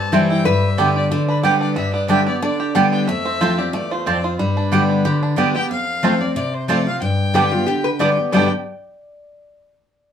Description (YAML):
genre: bluegrass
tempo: 183 BPM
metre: 4/4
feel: swing 54% on 8ths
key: G mixolydian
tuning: A4 = 440 Hz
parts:
  - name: bluegrass banjo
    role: melody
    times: 0.0-8.5 s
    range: G3 to G4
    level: -26 LUFS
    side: right 2 dB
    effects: none
  - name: clear fiddle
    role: melody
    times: 0.0-8.5 s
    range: B4 to A5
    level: -26 LUFS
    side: left 2 dB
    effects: none
  - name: picked steel-string acoustic guitar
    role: accompaniment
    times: 0.0-8.5 s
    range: E2 to G4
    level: -18 LUFS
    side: left 2 dB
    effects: none
  - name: lap resonator guitar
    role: second line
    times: 0.1-0.7, 7.3-8.5 s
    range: E4 to D5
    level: -22 LUFS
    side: left 3 dB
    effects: none
  - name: mandolin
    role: stabs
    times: 0.1-8.5 s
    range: B3 to A5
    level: -20 LUFS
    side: right 6 dB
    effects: none
room: wet studio reverb, RT60 0.5 s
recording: band playing live in one room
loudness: -16 LUFS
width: side -8 dB against mid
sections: 0.0-5.7 A section; 5.7-8.3 B section; 8.3-9.6 C section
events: none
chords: 0.5 G; 3.1 F; 4.4 G; 5.7 F; 7.0 G